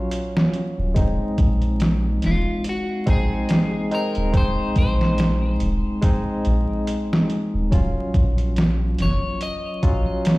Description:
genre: trip hop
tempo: 71 BPM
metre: 4/4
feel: swing 56% on 16ths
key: unclear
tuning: A4 = 440 Hz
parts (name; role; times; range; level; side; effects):
- electric guitar at the edge of break-up; melody; 0.0-10.4 s; F4 to Eb5; -29 LUFS; left 2 dB; tape echo
- barky tine electric piano; accompaniment; 0.0-10.4 s; Gb3 to F4; -25 LUFS; equal; tremolo, tape echo
- trip hop sampler-style drum kit; drums; 0.1-10.4 s; hi-hat, kick drum, snare drum; -20 LUFS; equal; overdrive
- soft dub sub bass; bass; 0.8-10.0 s; Eb1 to Bb1; -21 LUFS; equal; tube saturation
room: digital ambience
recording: played on a big sound system in a bare room, large studio reverb, vinyl crackle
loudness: -18 LUFS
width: side -20 dB against mid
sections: 0.0-10.4 A section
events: none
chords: 0.0 Ebm7; 1.0 Abadd9/Eb; 7.7 Ebm7

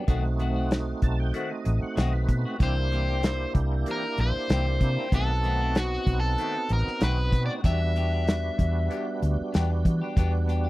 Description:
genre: straight-eighth soul blues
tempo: 95 BPM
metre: 4/4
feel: swing 54% on 16ths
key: E minor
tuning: A4 = 440 Hz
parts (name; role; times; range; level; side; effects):
- biting overdriven guitar; melody; 0.0-10.7 s; F#4 to E5; -30 LUFS; left 1 dB; none
- tonewheel organ; accompaniment; 0.0-10.7 s; G3 to A5; -32 LUFS; right 4 dB; slow rotary speaker, overdrive, chorus vibrato
- semi-hollow electric guitar; stabs; 0.0-10.7 s; D#3 to G4; -36 LUFS; left 6 dB; phaser
- vintage muted fingered electric bass; bass; 0.1-10.7 s; A1 to E3; -25 LUFS; equal; none
- warm soul drum kit; drums; 0.1-10.6 s; hi-hat, kick drum, snare drum; -25 LUFS; equal; none
room: little or no reverb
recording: dry, close 1970s-style studio recording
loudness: -23 LUFS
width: side -18 dB against mid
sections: 0.0-10.7 A section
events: tonewheel organ fill 0.7-2.6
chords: 0.1 B7b9; 2.6 C7; 5.1 B7b9; 7.6 Em7

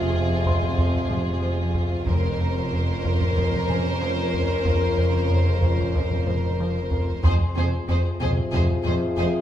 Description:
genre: cinematic, suspense film score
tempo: 93 BPM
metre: 4/4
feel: straight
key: unclear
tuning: A4 = 441 Hz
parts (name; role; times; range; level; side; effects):
- warm studio violin section; melody; 0.0-9.3 s; Ab4 to C5; -33 LUFS; left 1 dB; none
- rich studio violin section; second line; 0.0-9.3 s; F4 to Bb4; -32 LUFS; equal; none
- warm studio viola section; accompaniment; 0.0-9.3 s; C4 to Db4; -35 LUFS; right 2 dB; none
- mellow French horn section; sustained chords; 0.0-9.4 s; C4 to C5; -32 LUFS; left 4 dB; none
- mellow trombone section; sustained chords; 0.0-9.4 s; C3 to F3; -31 LUFS; left 1 dB; none
- warm studio cello section; bass; 0.0-9.2 s; F2; -29 LUFS; equal; none
- warm studio double bass section; bass; 0.0-9.3 s; F1; -29 LUFS; equal; none
- felt-muted upright piano; texture; 0.0-9.4 s; Bb4 to C6; -38 LUFS; left 2 dB; none
- rubbery square bass; riff; 0.1-9.4 s; F2 to F3; -25 LUFS; equal; none
- taiko ensemble; drums; 0.5-9.2 s; none; -28 LUFS; equal; none
- timpani; percussion; 2.1-3.0 s; F2; -32 LUFS; equal; none
room: wet stone room reverb, RT60 1.2 s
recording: heard from further back in the room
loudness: -20 LUFS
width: side -11 dB against mid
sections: 0.0-9.4 A section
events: none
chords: 0.0 Fm; 2.1 Bbmadd9/F; 7.2 Fm

